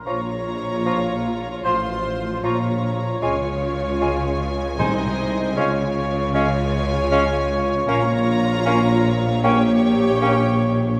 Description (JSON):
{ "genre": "classical, dramatic, fast romantic movement for symphony orchestra", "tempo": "154 BPM", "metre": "4/4", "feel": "straight", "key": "Bb minor", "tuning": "A4 = 441 Hz", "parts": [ { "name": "mellow cor anglais", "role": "second line", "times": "0.0-10.4 s", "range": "C5 to Db5", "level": "-31 LUFS", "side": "equal", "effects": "none" }, { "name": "warm symphonic violin section", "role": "melody", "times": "0.1-11.0 s", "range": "G5 to C6", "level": "-37 LUFS", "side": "equal", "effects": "none" }, { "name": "bright clarinet", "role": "second line", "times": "0.1-10.4 s", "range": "Db4 to F4", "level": "-32 LUFS", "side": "equal", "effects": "none" }, { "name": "rich studio violin section", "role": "second line", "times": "0.1-11.0 s", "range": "C5 to Eb5", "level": "-36 LUFS", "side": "equal", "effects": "none" }, { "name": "silver concert flute", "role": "second line", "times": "0.1-10.4 s", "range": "F5 to C6", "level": "-33 LUFS", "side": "equal", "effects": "none" }, { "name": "dark studio viola section", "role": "accompaniment", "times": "0.1-11.0 s", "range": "Eb4 to G4", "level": "-32 LUFS", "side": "equal", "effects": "none" }, { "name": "warm bassoon", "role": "accompaniment", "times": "0.1-10.4 s", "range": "F3 to Bb3", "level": "-32 LUFS", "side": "equal", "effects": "none" }, { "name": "mellow French horn section", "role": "sustained chords", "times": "0.1-11.0 s", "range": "F3 to G4", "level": "-31 LUFS", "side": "equal", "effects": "none" }, { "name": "mellow trumpet", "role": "stabs", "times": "0.1-11.0 s", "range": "C5 to Db5", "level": "-29 LUFS", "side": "equal", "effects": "none" }, { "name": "mellow tuba", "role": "bass", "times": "0.1-11.0 s", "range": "A1 to Db2", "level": "-30 LUFS", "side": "equal", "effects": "none" }, { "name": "rich symphonic cello section", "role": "bass", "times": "0.1-11.0 s", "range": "A2 to Db3", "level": "-28 LUFS", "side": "equal", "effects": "none" }, { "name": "rich symphonic double bass section", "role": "bass", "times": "0.1-11.0 s", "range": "A1 to Db2", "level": "-29 LUFS", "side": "equal", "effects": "none" }, { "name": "timpani", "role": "percussion", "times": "4.8-5.3 s", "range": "C3", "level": "-31 LUFS", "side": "equal", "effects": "none" } ], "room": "wet scoring stage reverb, RT60 1.6 s", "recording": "none", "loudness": "-20 LUFS", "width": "mono", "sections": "0.1-11.0 A section", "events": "none", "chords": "0.1 Bbm; 1.6 F/A; 2.4 Bbm; 3.2 Db; 4.8 Ab/C; 5.6 Db; 7.9 Bbm; 9.4 Gdim/Bb", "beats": "| 0.06 0.46 0.86 1.25 | 1.65 2.04 2.44 2.83 | 3.22 3.62 4.01 4.40 | 4.79 5.18 5.57 5.96 | 6.34 6.73 7.12 7.50 | 7.89 8.27 8.66 9.05 | 9.44 9.83 10.22 10.62" }